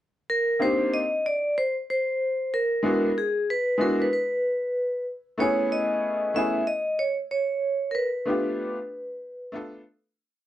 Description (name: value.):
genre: hip hop.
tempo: 94 BPM.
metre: 4/4.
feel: swing 66% on 16ths.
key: unclear.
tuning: A4 = 440 Hz.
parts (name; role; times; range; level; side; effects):
vibraphone with hard mallets; melody; 0.3-9.8 s; G#4 to E5; -25 LUFS; equal; none.
bright upright piano; accompaniment; 0.6-9.8 s; G#3 to A4; -26 LUFS; left 1 dB; none.
room: moderate studio reverb, RT60 0.6 s.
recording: dark, warm production.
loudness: -23 LUFS.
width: side -12 dB against mid.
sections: 0.3-10.5 head.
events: fade-out 7.9-10.5.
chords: 0.3 Cm7; 2.8 E7; 5.4 Amaj7; 7.9 G7.